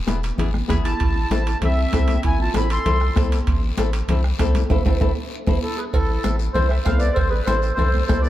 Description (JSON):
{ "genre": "latin, cumbia", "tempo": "195 BPM", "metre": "4/4", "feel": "straight", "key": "A harmonic minor", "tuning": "A4 = 440 Hz", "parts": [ { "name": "flamenco guitar", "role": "accompaniment", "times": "0.1-8.3 s", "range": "B3 to A4", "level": "-27 LUFS", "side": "left 4 dB", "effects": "none" }, { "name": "round analog bass", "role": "bass", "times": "0.1-8.3 s", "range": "E1 to C2", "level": "-21 LUFS", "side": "equal", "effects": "none" }, { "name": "bombo", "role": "percussion", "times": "0.1-8.2 s", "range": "none", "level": "-22 LUFS", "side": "right 2 dB", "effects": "none" }, { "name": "congas", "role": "percussion", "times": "0.1-8.2 s", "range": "none", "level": "-28 LUFS", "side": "left 2 dB", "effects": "none" }, { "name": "guiro", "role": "percussion", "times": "0.1-8.3 s", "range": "none", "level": "-38 LUFS", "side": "left 6 dB", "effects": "none" }, { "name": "timbales and cowbell", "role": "percussion", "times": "0.1-8.2 s", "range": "none", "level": "-33 LUFS", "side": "right 5 dB", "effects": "none" }, { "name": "accordion", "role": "melody", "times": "0.7-3.1, 5.6-8.3 s", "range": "A4 to C6", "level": "-26 LUFS", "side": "equal", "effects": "light tremolo tuning" }, { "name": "breathy clarinet", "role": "second line", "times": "0.7-3.1, 5.6-8.3 s", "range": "C4 to C5", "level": "-29 LUFS", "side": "right 3 dB", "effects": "none" } ], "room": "light reverb", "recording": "heard from further back in the room", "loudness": "-18 LUFS", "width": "side -14 dB against mid", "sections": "0.0-5.9 A section; 5.9-8.3 A section", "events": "band accent 4.7-5.9; drum fill 5.3-5.9", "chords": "0.0 E; 1.0 Am" }